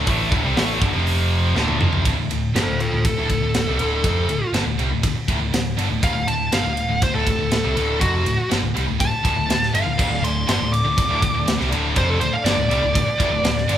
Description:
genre	hard rock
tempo	121 BPM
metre	4/4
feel	straight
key	unclear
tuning	A4 = 441 Hz
part	tonewheel organ	sustained chords	0.0-2.0, 10.0-13.8 s	F3 to E5	-35 LUFS	equal	none
part	heavy high-gain guitar	riff	0.0-2.0, 10.0-13.8 s	D2 to A3	-27 LUFS	equal	distortion
part	overdriven electric guitar	riff	0.0-13.8 s	D2 to A3	-26 LUFS	left 6 dB	none
part	scooped high-gain guitar	riff	0.0-13.8 s	D2 to A3	-27 LUFS	right 8 dB	distortion
part	overdriven picked electric bass	bass	0.0-13.8 s	D1 to C2	-24 LUFS	right 1 dB	none
part	tight metal drum kit	drums	0.1-13.8 s	crash cymbal, hi-hat, kick drum, ride cymbal, snare drum, toms	-23 LUFS	equal	none
part	smooth overdriven lead guitar	melody	2.6-13.8 s	F4 to D6	-23 LUFS	equal	none
room	moderate large studio reverb, RT60 1.5 s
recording	band playing live in one room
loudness	-18 LUFS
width	side -10 dB against mid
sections	0.0-2.1 A section; 2.1-13.8 B section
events	drum fill 1.6-2.1; lead electric guitar solo 2.1-13.8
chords	0.0 D5; 0.9 F5; 1.6 D5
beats	| 0.07 0.56 1.06 1.55 | 2.05 2.55 3.04 3.54 | 4.04 4.54 5.03 5.53 | 6.03 6.52 7.02 7.51 | 8.01 8.50 9.00 9.49 | 9.99 10.48 10.97 11.47 | 11.96 12.46 12.95 13.44

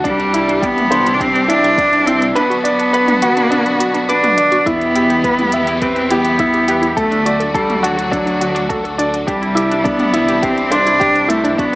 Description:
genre	piano and strings electronica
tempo	104 BPM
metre	4/4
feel	straight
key	unclear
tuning	A4 = 440 Hz
part	clear studio string section	sustained chords	0.0-11.8 s	A2 to G4	-24 LUFS	left 1 dB	sidechain pumping
part	clear upright piano	riff	0.0-11.8 s	D4 to E5	-17 LUFS	equal	none
part	dark detuned saw bass	bass	0.0-11.8 s	B1 to E2	-27 LUFS	equal	sidechain pumping
part	electronic kick drum	drums	0.0-11.7 s	none	-26 LUFS	equal	none
part	rich cello	melody	0.1-11.8 s	F#3 to D4	-15 LUFS	equal	none
part	organic electronic drum kit	drums	0.1-11.7 s	hi-hat, toms	-26 LUFS	equal	none
part	analog pluck	arpeggios	0.2-11.8 s	D4 to D6	-24 LUFS	right 1 dB	chorus, cassette tape, sidechain pumping, tape echo
room	moderate lush hall reverb, RT60 2.2 s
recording	small speaker sound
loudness	-12 LUFS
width	side -21 dB against mid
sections	0.0-11.8 A section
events	none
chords	0.0 Cadd9; 2.4 Bm; 4.7 Em; 7.0 D; 9.3 Cadd9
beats	| 0.05 0.62 1.20 1.78 | 2.36 2.93 3.51 4.09 | 4.66 5.24 5.82 6.39 | 6.97 7.55 8.12 8.70 | 9.28 9.86 10.43 11.01 | 11.59

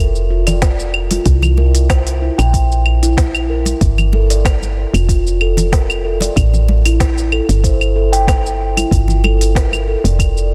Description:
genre	organic downtempo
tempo	94 BPM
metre	4/4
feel	swing 53% on 16ths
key	G dorian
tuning	A4 = 441 Hz
part	steel tongue drum	arpeggios	0.0-10.2 s	E4 to G5	-22 LUFS	equal	tape echo
part	woody FM bass	bass	0.0-10.5 s	F1 to C2	-17 LUFS	equal	sidechain pumping
part	organic electronic drum kit	drums	0.2-10.5 s	cabasa, claves, hi-hat, snare drum	-24 LUFS	equal	none
part	congas	percussion	0.5-10.2 s	none	-25 LUFS	equal	none
part	electronic kick drum	drums	0.6-10.3 s	none	-17 LUFS	equal	none
room	little or no reverb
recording	dense, heavily limited modern master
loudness	-14 LUFS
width	mono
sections	0.0-10.5 A section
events	none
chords	0.0 N.C.; 1.3 C7; 3.8 Gm9; 6.4 A7(no3); 8.9 G7sus2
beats	0.62 | 1.26 1.90 2.53 3.17 | 3.81 4.45 5.09 5.73 | 6.36 7.00 7.64 8.28 | 8.92 9.56 10.19

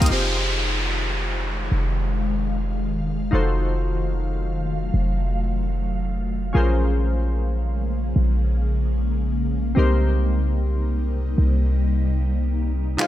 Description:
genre	future bass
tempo	free time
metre	none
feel	none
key	F minor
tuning	A4 = 440 Hz
part	glassy digital keys	accompaniment	0.0-13.1 s	C4 to F5	-29 LUFS	left 2 dB	chorus, digital delay
part	supersaw chords	riff	0.0-0.1, 13.0-13.1 s	Ab3 to Eb5	-31 LUFS	left 1 dB	phaser, low-pass filter, digital delay
part	warm 808-style bass	bass	0.0-13.1 s	F1 to C2	-21 LUFS	equal	high-pass filter
part	pop drum kit	drums	0.0-0.1, 13.0-13.1 s	handclaps, hi-hat	-25 LUFS	equal	low-pass filter on snare, low-pass filter on hats
part	ethereal airy pad	sustained chords	0.7-13.1 s	C3 to F5	-28 LUFS	left 1 dB	ensemble chorus, built-in reverb, phaser
part	downlifter and riser	sound effects	0.1-3.3, 13.0-13.1 s	none	-27 LUFS	equal	none
part	soft octave-layered synth lead	melody	13.0-13.1 s	F5	-34 LUFS	equal	none
room	digital ambience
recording	none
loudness	-20 LUFS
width	side -13 dB against mid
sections	0.1-13.0 A section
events	none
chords	0.1 Fm9; 3.3 F7b9; 6.5 Bbm7; 9.8 Cm7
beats	free time

